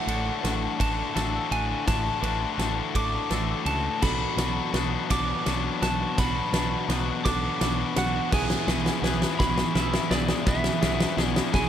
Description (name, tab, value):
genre	post-rock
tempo	56 BPM (dotted quarters)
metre	6/8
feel	straight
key	unclear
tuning	A4 = 440 Hz
part	lightly driven lead guitar	melody	0.0-11.7 s	D5 to D6	-31 LUFS	right 2 dB	analog delay
part	clean electric guitar	arpeggios	0.0-11.7 s	A2 to E5	-37 LUFS	right 1 dB	ensemble chorus, analog delay
part	felt-muted upright piano	arpeggios	0.0-11.7 s	G#4 to B4	-41 LUFS	right 12 dB	analog delay
part	distorted electric guitar	riff	0.0-11.7 s	A2 to G#4	-28 LUFS	left 8 dB	overdrive
part	woody fretless electric bass	bass	0.1-11.7 s	A1 to C#2	-30 LUFS	right 1 dB	none
part	big rock drum kit	drums	0.1-11.7 s	crash cymbal, kick drum, ride cymbal, snare drum	-28 LUFS	right 1 dB	none
room	small room ambience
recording	none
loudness	-23 LUFS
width	side -10 dB against mid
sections	0.0-11.7 A section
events	build-up 0.0-11.7; drum fill 0.0-11.7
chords	0.0 D/A; 4.0 Bm; 8.3 Eadd9/B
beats	0.80 | 1.88 2.95 | 4.03 5.10 | 6.18 7.25 | 8.32 9.40 | 10.47 11.54